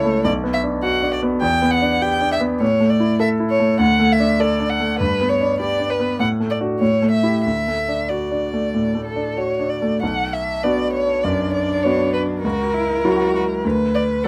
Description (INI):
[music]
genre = quick classical-period movement for piano trio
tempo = 100 BPM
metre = 4/4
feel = rubato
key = D major, B minor from 10.0 s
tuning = A4 = 442 Hz
[part]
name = warm violin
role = melody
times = 0.0-14.3 s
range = A4 to G5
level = -23 LUFS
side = equal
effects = none
[part]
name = clear baby grand piano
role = accompaniment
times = 0.0-14.3 s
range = B1 to A4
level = -21 LUFS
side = equal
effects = none
[part]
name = rich cello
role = second line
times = 11.2-14.3 s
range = D4 to B4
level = -26 LUFS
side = equal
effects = none
[sound]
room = light reverb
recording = close, detailed microphones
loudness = -19 LUFS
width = mono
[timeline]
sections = 0.0-10.0 A section; 10.0-14.3 B section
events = none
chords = 0.2 Bm; 1.4 Em7; 2.6 A5; 3.8 D5; 5.0 G; 6.2 D/A; 6.8 A7; 7.4 D; 10.0 Bm; 12.4 F#7/C#; 13.6 Bm/D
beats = | 0.24 0.83 1.42 2.02 | 2.61 3.20 3.80 4.40 | 5.00 5.60 6.19 6.81 | 7.45 8.09 8.73 9.37 | 10.02 10.63 11.24 11.84 | 12.44 13.04 13.64 14.24